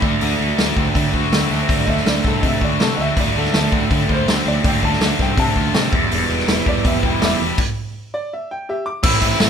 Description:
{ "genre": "indie rock", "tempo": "163 BPM", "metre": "4/4", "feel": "straight", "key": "unclear", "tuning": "A4 = 440 Hz", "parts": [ { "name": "biting overdriven guitar", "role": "riff", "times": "0.0-9.5 s", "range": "E2 to F#4", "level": "-22 LUFS", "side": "left 4 dB", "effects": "none" }, { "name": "thick fuzz guitar", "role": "riff", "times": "0.0-9.5 s", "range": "A2 to F#4", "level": "-22 LUFS", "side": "right 5 dB", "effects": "distortion" }, { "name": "fuzz picked electric bass", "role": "bass", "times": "0.0-9.5 s", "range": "E1 to D3", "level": "-23 LUFS", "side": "equal", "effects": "overdrive" }, { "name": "vintage drum kit", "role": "drums", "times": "0.0-9.5 s", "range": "crash cymbal, hi-hat, kick drum, snare drum", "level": "-19 LUFS", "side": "equal", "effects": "none" }, { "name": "warm upright piano", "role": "melody", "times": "1.8-9.4 s", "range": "G4 to E6", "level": "-25 LUFS", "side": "left 1 dB", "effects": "none" } ], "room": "light reverb", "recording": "band playing live in one room", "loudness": "-15 LUFS", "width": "side -7 dB against mid", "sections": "0.0-9.0 A section", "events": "upright piano solo 0.0-9.0; stop 7.6-9.0", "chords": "0.0 D7; 3.2 Dm7; 5.9 Em7", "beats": "| 0.21 0.58 0.95 1.32 | 1.69 2.06 2.43 2.80 | 3.17 3.54 3.90 4.27 | 4.64 5.01 5.38 5.74 | 6.11 6.48 6.84 7.21 | 7.58 7.94 8.31 8.67 | 9.04 9.40" }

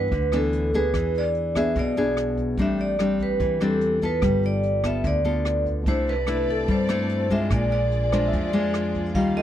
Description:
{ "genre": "bossa nova", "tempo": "146 BPM", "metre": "4/4", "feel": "straight", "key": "unclear", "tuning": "A4 = 440 Hz", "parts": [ { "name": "vibraphone with medium hard mallets", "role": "melody", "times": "0.0-9.4 s", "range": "A4 to F5", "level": "-25 LUFS", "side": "right 1 dB", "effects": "none" }, { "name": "nylon-string guitar", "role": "accompaniment", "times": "0.0-9.4 s", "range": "G2 to A4", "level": "-25 LUFS", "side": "left 2 dB", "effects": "none" }, { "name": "warm grand piano", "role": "accompaniment", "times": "0.0-2.6, 6.3-9.4 s", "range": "A4 to F#5", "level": "-37 LUFS", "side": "right 2 dB", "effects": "none" }, { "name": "upright bass", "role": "bass", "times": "0.0-9.4 s", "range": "G1 to G2", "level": "-28 LUFS", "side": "right 1 dB", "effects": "none" }, { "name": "jazz brush drum kit", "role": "drums", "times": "0.1-9.4 s", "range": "hi-hat, kick drum, rim click", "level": "-31 LUFS", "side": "right 1 dB", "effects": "none" }, { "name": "warm studio string section", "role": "sustained chords", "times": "5.9-9.4 s", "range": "Bb3 to F5", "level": "-34 LUFS", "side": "right 1 dB", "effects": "none" } ], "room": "small room ambience", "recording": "dry, close 1970s-style studio recording", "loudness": "-21 LUFS", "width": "side -11 dB against mid", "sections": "0.0-9.4 A section", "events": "none", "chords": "0.0 G6 (rootless); 0.9 E7; 2.6 Am11; 4.2 G9; 5.9 C69; 7.5 Bb7", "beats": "0.12 0.53 | 0.94 1.35 1.76 2.17 | 2.58 3.00 3.40 3.82 | 4.23 4.64 5.05 5.46 | 5.87 6.28 6.69 7.10 | 7.51 7.92 8.33 8.74 | 9.15" }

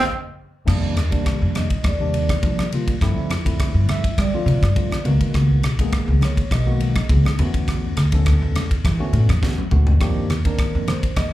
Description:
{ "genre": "electric jazz fusion", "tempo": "103 BPM", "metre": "4/4", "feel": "swing 53% on 16ths", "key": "unclear", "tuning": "A4 = 440 Hz", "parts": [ { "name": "tine electric piano", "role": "accompaniment", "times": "0.0-11.3 s", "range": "C3 to E5", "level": "-25 LUFS", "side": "left 1 dB", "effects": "medium stereo tremolo, slapback echo" }, { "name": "upright bass", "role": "bass", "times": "0.0-11.3 s", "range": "Cb2 to G3", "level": "-19 LUFS", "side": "equal", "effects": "none" }, { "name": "crisp fusion drum kit", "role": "drums", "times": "0.7-11.3 s", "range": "crash cymbal, kick drum, ride cymbal, rim click, snare drum, toms", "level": "-22 LUFS", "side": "equal", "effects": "none" }, { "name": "congas", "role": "percussion", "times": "1.0-11.3 s", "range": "none", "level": "-28 LUFS", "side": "equal", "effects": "none" } ], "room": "little or no reverb", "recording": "live gig heard through the venue's PA, club reverb", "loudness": "-17 LUFS", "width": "side -15 dB against mid", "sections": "0.7-11.3 A section", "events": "tine electric piano fill 0.0-0.7; band accent 0.0-0.7; drum fill 9.4-10.0", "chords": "0.0 N.C.; 0.7 F13sus4; 3.0 G13sus4; 5.1 Db13sus4; 7.4 E13sus4; 10.0 F13sus4", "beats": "0.10 | 0.69 1.27 1.85 2.43 | 3.02 3.60 4.18 4.77 | 5.35 5.93 6.51 7.10 | 7.68 8.26 8.84 9.42 | 10.01 10.59 11.17" }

